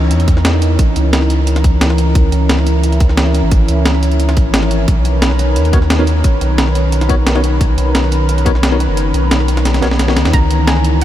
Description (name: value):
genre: liquid drum and bass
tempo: 176 BPM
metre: 4/4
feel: straight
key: C# dorian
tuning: A4 = 441 Hz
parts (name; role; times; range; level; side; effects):
- lush unison pad; sustained chords; 0.0-11.0 s; D#3 to B4; -18 LUFS; equal; chorus, sidechain pumping
- warm sub bass; bass; 0.0-11.0 s; F#1 to E2; -14 LUFS; equal; none
- breakbeat sampler-style drum kit; drums; 0.1-11.0 s; hi-hat, snare drum; -18 LUFS; equal; none
- electronic kick drum; drums; 0.3-10.4 s; none; -13 LUFS; equal; none
- bell-like tine electric piano; accompaniment; 5.7-10.1 s; B3 to C#5; -21 LUFS; left 2 dB; medium stereo tremolo, diffuse ambient delay
- soft round pluck; melody; 10.3-11.0 s; G#5 to A#5; -20 LUFS; equal; chorus, ping-pong delay
room: light reverb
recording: none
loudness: -10 LUFS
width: side -12 dB against mid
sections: 0.0-11.0 A section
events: kick drops out 9.0-10.3; drum fill 9.7-10.3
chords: 0.0 C#m69; 4.9 Bmaj9; 10.3 C#m69